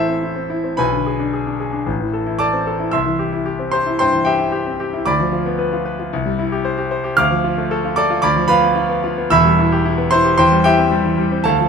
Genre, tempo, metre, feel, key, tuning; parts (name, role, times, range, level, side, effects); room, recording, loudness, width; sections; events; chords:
classical, virtuoso piano study; 113 BPM; 4/4; rubato; A4 = 440 Hz
clear concert grand piano; solo; 0.0-11.7 s; E1 to F6; -15 LUFS; equal
light reverb; minimal, uncompressed stereo recording; -15 LUFS; side -6 dB against mid
0.0-11.7 A section
0.0 Am; 0.8 G#dim/B; 1.9 Am; 2.9 C; 5.1 Bdim/D; 6.1 C; 7.2 Dm; 8.2 Bdim/D; 9.3 Em; 10.4 C/E